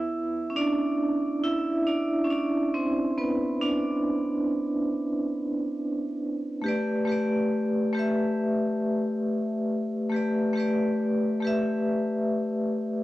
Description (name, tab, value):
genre	hip hop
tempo	69 BPM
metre	4/4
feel	swing 57% on 16ths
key	unclear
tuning	A4 = 440 Hz
part	vibraphone with hard mallets	solo	0.0-13.0 s	A3 to E5	-24 LUFS	equal	cassette tape
room	moderate spring reverb, RT60 2.1 s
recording	home recording on cassette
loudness	-24 LUFS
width	side -16 dB against mid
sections	0.0-6.7 A section; 6.7-13.0 B section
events	vibraphone solo 0.0-6.7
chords	0.0 Asus4 (rootless); 6.7 A9sus4